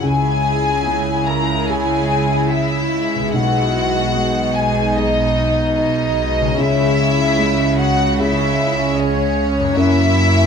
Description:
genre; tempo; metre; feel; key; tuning
cinematic, emotional film score for orchestra; 74 BPM; 4/4; rubato; C# dorian; A4 = 442 Hz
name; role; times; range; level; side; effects
warm studio violin section; melody; 0.0-10.5 s; C#5 to A#5; -23 LUFS; left 3 dB; none
warm studio violin section; second line; 0.0-10.5 s; C#4 to A#4; -24 LUFS; left 5 dB; none
felt-muted upright piano; accompaniment; 0.0-10.5 s; B1 to G#4; -23 LUFS; equal; none
rich studio viola section; accompaniment; 0.0-10.5 s; G#3 to E4; -25 LUFS; right 4 dB; none
dark French horn section; sustained chords; 0.0-10.5 s; G#3 to D#5; -24 LUFS; left 3 dB; none
concert harp; arpeggios; 0.0-10.5 s; F#2 to G#4; -25 LUFS; left 10 dB; none
dark studio double bass section; bass; 0.0-10.5 s; F#1 to C#2; -23 LUFS; right 4 dB; none
warm studio cello section; bass; 0.0-10.5 s; F#2 to C#3; -24 LUFS; right 3 dB; none
mellow flute section; second line; 0.1-10.5 s; C#5 to A#5; -24 LUFS; equal; none
room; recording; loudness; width
moderate scoring stage reverb, RT60 1.9 s; close, detailed microphones; -14 LUFS; side -6 dB against mid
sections
0.0-10.5 A section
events
none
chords
0.0 C#m; 3.3 G#m/B; 6.6 C#m; 9.8 F#

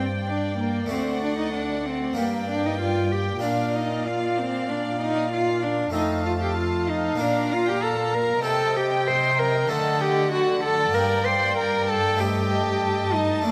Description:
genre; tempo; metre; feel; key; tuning
classical, baroque-style concerto movement with solo episodes; 96 BPM; 4/4; straight; G minor; A4 = 441 Hz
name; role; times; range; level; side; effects
rich chamber violin section; melody; 0.0-13.5 s; Bb4 to C6; -38 LUFS; equal; none
warm cello; melody; 0.0-13.5 s; Bb3 to C5; -26 LUFS; equal; none
rich chamber violin section; second line; 0.0-13.5 s; F5 to Bb5; -34 LUFS; equal; none
harpsichord; accompaniment; 0.0-13.5 s; D2 to G4; -34 LUFS; equal; none
warm symphonic viola section; accompaniment; 0.0-13.5 s; D5 to F5; -37 LUFS; equal; none
warm chamber cello section; bass; 0.0-13.5 s; D2 to D3; -31 LUFS; equal; none
room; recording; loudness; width
moderate scoring stage reverb, RT60 1.8 s; none; -24 LUFS; mono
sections
0.0-13.5 A section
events
none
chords
0.0 Gm; 0.9 D; 2.2 Gm; 3.4 Bb; 5.9 F; 7.2 Bb; 8.4 Cm; 9.7 D; 11.0 Gm; 12.2 Am7b5/G

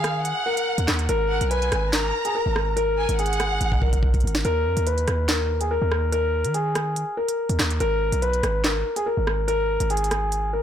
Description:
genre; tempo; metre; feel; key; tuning
hip hop, drill; 143 BPM; 4/4; half-time; Eb minor; A4 = 439 Hz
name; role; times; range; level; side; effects
dark baby grand piano; melody; 0.0-10.6 s; Ab4 to Cb5; -24 LUFS; left 2 dB; low-pass filter, tape echo
warm studio violin section; second line; 0.0-4.0 s; F5 to Bb5; -28 LUFS; right 2 dB; tape echo
hard-hitting 808-style bass; bass; 0.0-10.6 s; Ab1 to Eb3; -25 LUFS; right 1 dB; none
drill drum kit; drums; 0.0-10.4 s; handclaps, hi-hat, kick drum, rim click, snare drum; -25 LUFS; right 1 dB; soft clipping on snare
room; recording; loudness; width
small room ambience; blown-out, overdriven recording, overdrive; -20 LUFS; side -9 dB against mid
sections
0.0-4.4 A section; 4.4-10.6 A section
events
drum fill 3.6-4.4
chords
0.0 Ebmadd9; 1.1 Ab7(no3); 4.4 Eb5; 7.8 N.C.

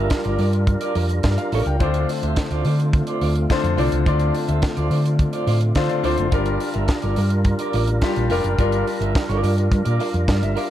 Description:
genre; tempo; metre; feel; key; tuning
disco; 106 BPM; 4/4; straight; unclear; A4 = 441 Hz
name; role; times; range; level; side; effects
clean electric guitar; accompaniment; 0.0-10.7 s; F4 to E5; -29 LUFS; right 4 dB; tremolo
clear concert grand piano; accompaniment; 0.0-10.7 s; D3 to G5; -26 LUFS; left 5 dB; none
percussive tonewheel organ; sustained chords; 0.0-10.7 s; D3 to Bb4; -26 LUFS; right 1 dB; chorus vibrato, slow rotary speaker
hollow-body short-scale fingered electric bass; bass; 0.0-10.5 s; F1 to D3; -20 LUFS; equal; none
tight funk drum kit; drums; 0.1-10.7 s; hi-hat, kick drum, snare drum; -24 LUFS; equal; none
room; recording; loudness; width
light reverb; dark, warm production; -18 LUFS; side -12 dB against mid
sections
0.0-10.7 A section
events
grand piano fill 5.5-6.3, 9.7-10.7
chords
0.0 Gm7; 1.8 Dm7; 6.3 Gm7

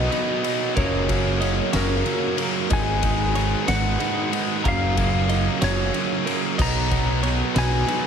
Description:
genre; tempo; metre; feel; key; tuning
post-rock; 62 BPM (dotted quarters); 6/8; straight; F# major; A4 = 440 Hz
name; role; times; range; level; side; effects
clean lap steel guitar; melody; 0.0-8.1 s; A#4 to A#5; -28 LUFS; left 2 dB; slapback echo
hand-pumped harmonium; sustained chords; 0.0-8.1 s; D#3 to B4; -37 LUFS; left 2 dB; none
twelve-string electric guitar; arpeggios; 0.0-8.1 s; A#4 to D#5; -34 LUFS; right 7 dB; slapback echo
fuzz guitar; riff; 0.0-8.1 s; F#2 to B3; -26 LUFS; right 12 dB; distortion
tight distorted guitar; riff; 0.0-8.1 s; F#2 to D#4; -28 LUFS; left 17 dB; distortion
growling picked electric bass; bass; 0.0-7.8 s; F#1 to B1; -24 LUFS; left 1 dB; overdrive
oversized low-tuned drum kit; drums; 0.1-8.0 s; crash cymbal, kick drum, ride cymbal, snare drum; -27 LUFS; left 1 dB; none
room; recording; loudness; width
small room ambience; none; -19 LUFS; side -7 dB against mid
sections
0.0-8.1 A section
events
none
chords
0.0 B6; 0.8 F#maj7; 2.7 G#m7; 4.6 F#maj7; 6.6 B6

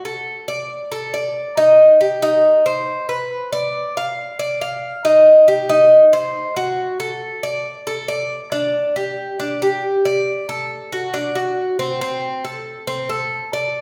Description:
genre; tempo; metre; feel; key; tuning
latin; 138 BPM; 4/4; straight; unclear; A4 = 439 Hz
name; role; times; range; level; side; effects
Cuban tres; solo; 0.0-13.8 s; C4 to F5; -17 LUFS; equal; none
room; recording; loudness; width
wet recital hall reverb, RT60 1.5 s; recorded in a church or concert hall; -17 LUFS; mono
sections
0.0-8.5 A section; 8.5-13.8 B section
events
none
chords
none

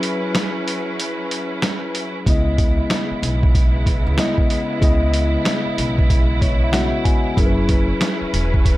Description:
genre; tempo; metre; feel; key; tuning
hip hop, boom-bap hip-hop; 94 BPM; 4/4; swing 63% on 16ths; C# minor; A4 = 441 Hz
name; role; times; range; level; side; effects
mellow tine electric piano; accompaniment; 0.0-8.8 s; C#3 to G#5; -22 LUFS; left 3 dB; cassette tape, high-pass filter, low-pass filter
rich symphonic string section; sustained chords; 0.0-8.8 s; C#3 to B4; -26 LUFS; right 3 dB; high-pass filter, low-pass filter
boom bap sampler-style drum kit; drums; 0.0-8.8 s; hi-hat, kick drum, snare drum; -18 LUFS; equal; none
upright bass; bass; 2.3-8.8 s; E1 to C#2; -20 LUFS; equal; none
room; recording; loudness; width
little or no reverb; none; -16 LUFS; side -17 dB against mid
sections
0.0-8.8 A section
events
break 0.0-2.3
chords
0.0 F#7sus4; 2.3 C#m7; 7.4 F#7sus4

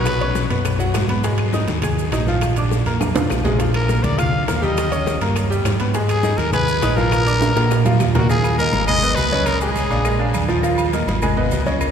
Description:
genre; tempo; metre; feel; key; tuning
latin, salsa; 204 BPM; 4/4; straight; unclear; A4 = 440 Hz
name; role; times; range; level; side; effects
growling trumpet; melody; 0.0-0.5, 3.8-10.5 s; Gb4 to F5; -23 LUFS; left 1 dB; none
bright concert grand piano; accompaniment; 0.0-11.9 s; F3 to Ab6; -23 LUFS; equal; none
fingered electric bass; bass; 0.0-11.9 s; Ab1 to Bb2; -20 LUFS; right 1 dB; none
bongos and cowbell; percussion; 0.1-11.9 s; none; -29 LUFS; left 5 dB; none
claves; percussion; 0.1-11.9 s; none; -37 LUFS; left 6 dB; none
congas; percussion; 0.1-11.9 s; none; -26 LUFS; equal; none
guiro; percussion; 0.1-11.9 s; none; -35 LUFS; left 6 dB; none
maracas; percussion; 0.1-11.9 s; none; -39 LUFS; right 5 dB; none
timbales and agogo bells; percussion; 0.1-11.9 s; none; -28 LUFS; right 4 dB; none
room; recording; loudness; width
wet cathedral reverb, RT60 5.3 s; recorded in a church or concert hall; -16 LUFS; side -8 dB against mid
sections
0.0-8.3 A section; 8.3-11.9 B section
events
drum fill 2.7-3.6, 7.4-8.3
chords
0.1 Bsus2; 1.2 Absus2; 2.4 Bb; 4.8 Eb7; 5.9 Abm; 7.1 Bb; 8.3 Ebsus2; 8.9 Abm; 9.5 Dbadd9; 10.1 Bb7; 10.6 Ebsus2; 11.2 Abm

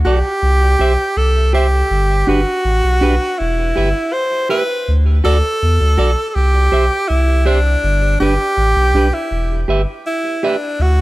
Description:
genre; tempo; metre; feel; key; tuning
roots reggae; 81 BPM; 4/4; straight; G major; A4 = 440 Hz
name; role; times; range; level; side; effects
clean electric guitar; accompaniment; 0.0-10.6 s; D4 to E5; -21 LUFS; right 2 dB; tape echo
warm sub bass; bass; 0.0-11.0 s; E1 to E2; -14 LUFS; equal; none
bright tenor saxophone; melody; 0.1-11.0 s; D4 to C5; -17 LUFS; equal; tape echo
room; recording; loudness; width
light reverb; none; -13 LUFS; side -18 dB against mid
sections
0.0-11.0 A section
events
none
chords
0.4 C; 1.9 G; 3.4 Em; 4.9 D; 6.3 C; 7.8 G; 9.3 Em

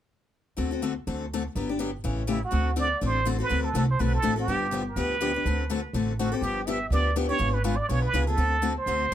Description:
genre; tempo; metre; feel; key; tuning
acoustic string swing (jazz manouche); 246 BPM; 4/4; swing 54% on 8ths; D mixolydian; A4 = 439 Hz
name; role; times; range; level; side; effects
picked steel-string acoustic guitar; accompaniment; 0.6-9.1 s; C#3 to A4; -29 LUFS; left 5 dB; none
upright bass; bass; 0.6-9.1 s; G1 to D2; -28 LUFS; right 1 dB; none
trumpet with plunger mute; melody; 2.3-9.1 s; E4 to E5; -28 LUFS; right 3 dB; analog delay
room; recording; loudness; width
light reverb; none; -24 LUFS; side -11 dB against mid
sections
0.6-2.5 A section; 2.5-9.1 B section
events
none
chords
0.6 D7; 1.6 Gmaj7; 2.0 A7; 2.5 D7; 4.5 G7; 5.5 D7; 6.4 G7; 7.4 G#dim7; 8.4 D7

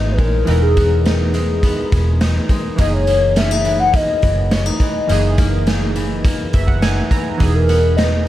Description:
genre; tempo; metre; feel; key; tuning
indie pop, bedroom pop; 104 BPM; 4/4; straight; unclear; A4 = 439 Hz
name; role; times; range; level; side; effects
hollow clarinet-like synth lead; melody; 0.0-8.2 s; G#4 to F#5; -19 LUFS; left 3 dB; analog chorus, plate reverb, tape echo
picked steel-string acoustic guitar; accompaniment; 0.0-8.3 s; F#2 to D#4; -24 LUFS; left 4 dB; wide subtle chorus, vibrato effect
warm analog keys; accompaniment; 0.0-8.3 s; E3 to A#5; -24 LUFS; right 4 dB; chorus, cassette tape
vintage muted fingered electric bass; bass; 0.0-8.3 s; E1 to A#1; -17 LUFS; equal; none
raw garage drum kit; drums; 0.2-8.1 s; hi-hat, kick drum, snare drum; -19 LUFS; equal; none
room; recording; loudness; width
light reverb; none; -13 LUFS; side -14 dB against mid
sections
0.0-8.3 A section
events
synth keys fill 6.2-7.4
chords
0.0 Emaj7; 2.8 F#13; 7.4 Emaj7

